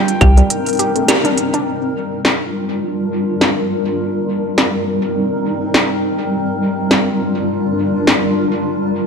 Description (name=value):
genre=IDM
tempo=103 BPM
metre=4/4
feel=swing 56% on 16ths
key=G minor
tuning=A4 = 440 Hz
part: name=felt-muted upright piano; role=melody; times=0.0-1.0 s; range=G5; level=-26 LUFS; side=equal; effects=dub echo
part: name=granular cloud pad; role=sustained chords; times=0.0-9.1 s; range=G3 to Bb4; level=-17 LUFS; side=left 1 dB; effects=built-in reverb, sidechain pumping
part: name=warbly dusty pluck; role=arpeggios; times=0.0-1.6 s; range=G3 to G4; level=-20 LUFS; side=right 5 dB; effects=chorus, digital delay
part: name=industrial drum kit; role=drums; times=0.1-8.2 s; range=claves, hi-hat, snare drum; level=-16 LUFS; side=equal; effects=dub echo
room=moderate echo chamber reverb, RT60 1.4 s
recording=none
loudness=-14 LUFS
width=side -6 dB against mid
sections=0.0-1.7 A section; 1.7-9.1 B section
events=band accent 1.1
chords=0.0 Cm7; 1.7 Gm7; 4.0 Cm7; 6.3 Gm7